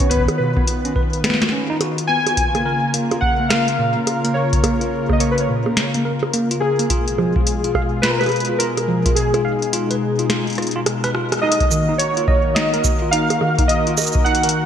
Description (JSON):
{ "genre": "IDM", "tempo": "106 BPM", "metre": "4/4", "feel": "swing 62% on 16ths", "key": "Eb minor", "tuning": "A4 = 440 Hz", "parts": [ { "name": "warbly lo-fi synth keys", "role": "melody", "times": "0.0-14.7 s", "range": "Ab4 to Ab5", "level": "-21 LUFS", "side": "equal", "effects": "chorus, digital delay" }, { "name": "warm analog pad", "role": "sustained chords", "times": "0.0-14.7 s", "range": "Cb3 to B4", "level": "-23 LUFS", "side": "left 2 dB", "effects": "chorus" }, { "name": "tine electric piano", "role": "arpeggios", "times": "0.0-14.5 s", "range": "Bb2 to F5", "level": "-24 LUFS", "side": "right 2 dB", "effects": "vintage 12-bit sampler grit, low-pass filter, ping-pong delay" }, { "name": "booming analog drum machine", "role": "drums", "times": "0.0-14.5 s", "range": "bongos, cabasa, hi-hat, rim click, snare drum", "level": "-22 LUFS", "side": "right 1 dB", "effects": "gated reverb" }, { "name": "electronic kick drum", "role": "drums", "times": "0.0-14.2 s", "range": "none", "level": "-20 LUFS", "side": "equal", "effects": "none" } ], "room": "moderate lush hall reverb, RT60 1.7 s", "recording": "bright 1980s-style digital production", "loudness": "-16 LUFS", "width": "side -9 dB against mid", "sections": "0.0-11.4 A section; 11.4-14.7 B section", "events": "filter sweep on tine electric piano 0.0-11.4; kick drops out 9.2-11.4; drum fill 10.6-11.4; band accent 11.3", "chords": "0.0 B; 2.4 Bbm; 6.9 Fdim; 11.4 Ebm" }